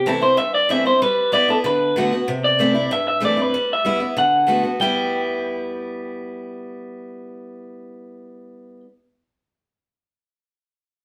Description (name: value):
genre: rock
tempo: 190 BPM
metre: 4/4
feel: straight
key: G major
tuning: A4 = 440 Hz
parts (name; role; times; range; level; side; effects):
- electric guitar through a small old amp; melody; 0.0-8.8 s; A4 to G5; -20 LUFS; equal; none
- picked steel-string acoustic guitar; accompaniment; 0.0-8.8 s; G2 to F#4; -26 LUFS; equal; none
room: moderate studio reverb, RT60 0.7 s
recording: band playing live in one room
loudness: -19 LUFS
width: mono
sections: 0.0-2.3 A section; 2.3-4.8 B section; 4.8-7.3 C section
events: none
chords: 0.0 C6; 1.0 G6; 1.6 D6; 2.3 C6; 3.5 G6; 4.2 D6; 4.8 G6